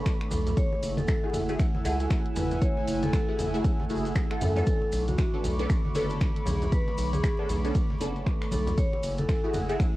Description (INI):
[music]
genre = deep house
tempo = 117 BPM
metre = 4/4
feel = swing 60% on 16ths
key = B dorian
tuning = A4 = 436 Hz
[part]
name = warbly tape-like pad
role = sustained chords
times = 0.0-10.0 s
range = A3 to E6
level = -37 LUFS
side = right 2 dB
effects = chorus, built-in reverb, sidechain pumping, cassette tape
[part]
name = filtered dub chord stab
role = stabs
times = 0.0-9.8 s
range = A3 to A4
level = -33 LUFS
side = equal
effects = phaser, ensemble chorus, vintage 12-bit sampler grit, sidechain pumping, cassette tape, tape echo
[part]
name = airy breathy pad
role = texture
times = 0.9-10.0 s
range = D3 to B5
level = -37 LUFS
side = right 2 dB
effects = chorus, sidechain pumping, cassette tape
[part]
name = deep house drum kit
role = drums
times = 0.1-9.9 s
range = finger snaps, hi-hat, ride cymbal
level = -42 LUFS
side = equal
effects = cassette tape
[part]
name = dusty soul sampler-style drum kit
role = drums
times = 0.1-9.9 s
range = hi-hat, snare drum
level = -52 LUFS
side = equal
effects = none
[part]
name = electronic kick drum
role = drums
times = 0.1-9.9 s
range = none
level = -27 LUFS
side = equal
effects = overdrive, cassette tape
[part]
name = maracas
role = percussion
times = 0.1-9.9 s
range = none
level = -47 LUFS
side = equal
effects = none
[part]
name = vibraphone with medium hard mallets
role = melody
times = 0.3-9.6 s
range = F#4 to C#5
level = -34 LUFS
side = left 1 dB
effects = cassette tape, tape echo
[part]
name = round analog bass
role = bass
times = 0.3-9.8 s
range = F#1 to F#2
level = -30 LUFS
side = equal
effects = sidechain pumping
[part]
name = congas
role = percussion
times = 0.3-9.7 s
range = none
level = -34 LUFS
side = left 1 dB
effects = sidechain pumping on perc
[sound]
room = light reverb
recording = home recording on cassette, vinyl crackle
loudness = -24 LUFS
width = side -17 dB against mid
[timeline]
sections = 0.0-10.0 A section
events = none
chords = 0.0 Bm9; 0.6 F#m9; 4.7 Bm9; 8.8 F#m9